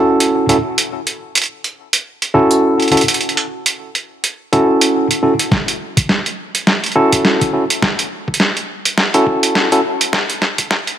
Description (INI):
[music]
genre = glitch hop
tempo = 104 BPM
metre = 4/4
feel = swing 58% on 16ths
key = F# minor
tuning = A4 = 440 Hz
[part]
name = mellow tine electric piano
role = stabs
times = 0.0-9.8 s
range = C#4 to A4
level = -14 LUFS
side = equal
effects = overdrive, sidechain pumping, low-pass filter, ping-pong delay
[part]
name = boom bap sampler-style drum kit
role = drums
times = 0.2-11.0 s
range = hi-hat, snare drum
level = -15 LUFS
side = right 1 dB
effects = none
[part]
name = electronic kick drum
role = drums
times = 5.5-10.7 s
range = none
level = -19 LUFS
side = equal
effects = none
[sound]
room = moderate lush hall reverb, RT60 1.8 s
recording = high-pass filter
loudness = -13 LUFS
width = side -10 dB against mid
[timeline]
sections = 0.0-11.0 A section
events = build-up 0.0-11.0; drum fill 5.5-11.0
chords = 0.0 F#m7